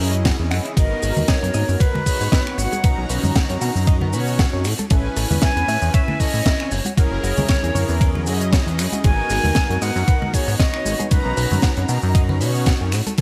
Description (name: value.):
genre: nu-disco, nu disco.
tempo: 116 BPM.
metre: 4/4.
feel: swing 55% on 16ths.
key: unclear.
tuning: A4 = 440 Hz.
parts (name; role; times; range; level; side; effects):
bright concert flute; melody; 0.0-11.9 s; B4 to G#5; -28 LUFS; equal; digital delay.
mellow synth brass; accompaniment; 0.0-13.2 s; B3 to A#5; -28 LUFS; equal; chorus, sidechain pumping.
direct-recorded clean electric guitar; riff; 0.0-13.2 s; F#3 to F#5; -35 LUFS; equal; subtle chorus.
fat analog bass; bass; 0.0-13.2 s; F#1 to B2; -24 LUFS; equal; none.
tight funk drum kit; drums; 0.0-13.2 s; finger snaps, hi-hat, ride cymbal, snare drum; -28 LUFS; equal; gated reverb.
electronic kick drum; drums; 0.3-13.2 s; none; -20 LUFS; equal; overdrive.
cabasa and congas; percussion; 0.8-13.2 s; none; -30 LUFS; equal; none.
room: light reverb, studio ambience.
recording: bright 1980s-style digital production.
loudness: -19 LUFS.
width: mono.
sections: 0.0-13.2 A section.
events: none.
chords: 0.0 F#7; 0.8 G#m9; 2.8 Bmaj7; 4.6 Amaj7; 6.7 F#7; 9.0 G#m9; 11.1 Bmaj7.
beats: 0.25 | 0.77 1.29 1.80 2.32 | 2.84 3.36 3.87 4.39 | 4.91 5.42 5.94 6.46 | 6.98 7.49 8.01 8.53 | 9.05 9.56 10.08 10.60 | 11.12 11.63 12.15 12.67 | 13.18.